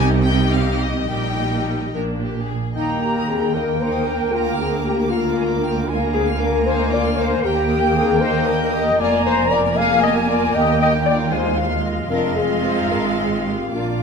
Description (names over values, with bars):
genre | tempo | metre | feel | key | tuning
quick classical-period movement for symphony orchestra | 70-78 BPM (dotted quarters) | 6/8 | rubato | Eb major | A4 = 440 Hz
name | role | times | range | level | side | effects
rich chamber violin section | melody | 0.0-14.0 s | G3 to G5 | -30 LUFS | left 5 dB | none
rich chamber violin section | second line | 0.0-14.0 s | G4 to G6 | -30 LUFS | left 3 dB | none
rich chamber viola section | accompaniment | 0.0-14.0 s | G3 to Bb4 | -25 LUFS | right 3 dB | none
dark chamber double bass section | bass | 0.0-14.0 s | F1 to Eb2 | -27 LUFS | right 3 dB | none
warm chamber cello section | bass | 0.0-14.0 s | D2 to C3 | -24 LUFS | right 4 dB | none
flute section | second line | 2.8-14.0 s | D5 to Bb5 | -26 LUFS | equal | none
mellow clarinet | second line | 2.8-14.0 s | Ab3 to D4 | -26 LUFS | left 3 dB | none
mellow cor anglais | second line | 2.8-14.0 s | Bb4 to Ab5 | -29 LUFS | right 2 dB | none
clear French horn section | sustained chords | 2.8-14.0 s | Eb4 to F5 | -21 LUFS | left 5 dB | none
room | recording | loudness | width
moderate recital hall reverb, RT60 1.6 s | close, detailed microphones | -17 LUFS | side -5 dB against mid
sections
0.0-2.8 A section; 2.8-14.0 B section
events
none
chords
0.0 Cm; 1.1 Eb/Bb; 1.9 Bb; 2.8 Eb; 4.3 Bb/D; 5.9 Bb7/D; 7.4 Eb; 9.0 Bb5/F; 10.5 Eb; 11.3 Fm7/Eb; 12.1 Fm